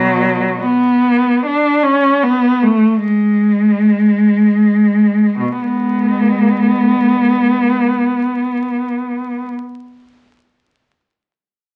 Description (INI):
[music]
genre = classical, free, expressive piece for unaccompanied cello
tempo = 33-80 BPM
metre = 3/4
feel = rubato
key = B dorian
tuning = A4 = 442 Hz
[part]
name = rich cello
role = solo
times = 0.0-9.5 s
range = B2 to D4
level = -14 LUFS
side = equal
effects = none
[sound]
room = moderate studio reverb, RT60 0.8 s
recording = very old 78 rpm record, vinyl crackle, nothing above 10.7 kHz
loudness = -14 LUFS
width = mono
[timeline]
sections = 0.0-5.4 A section; 5.4-8.7 B section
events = slowing down 0.0-5.4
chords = none